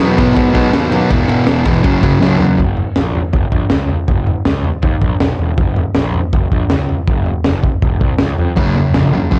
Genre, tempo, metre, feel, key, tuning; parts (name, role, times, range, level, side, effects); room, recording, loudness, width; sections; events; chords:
garage rock duo or trio; 160 BPM; 4/4; straight; F# mixolydian; A4 = 440 Hz
fuzz guitar; riff; 0.0-2.6, 8.6-9.4 s; E2 to B3; -15 LUFS; equal; distortion
fuzz picked electric bass; bass; 0.0-9.4 s; E1 to G#2; -21 LUFS; equal; overdrive
crunchy breakbeat drum kit; drums; 0.0-9.4 s; kick drum, ride cymbal, snare drum, toms; -17 LUFS; equal
light reverb; cassette tape; -14 LUFS; mono
0.0-2.6 A section; 2.6-9.4 B section
drum fill 2.2-2.6
0.0 B; 1.1 E5; 1.8 F#5; 2.6 F#; 5.2 E5; 5.6 F#; 7.8 C/E; 8.2 C#; 8.6 F#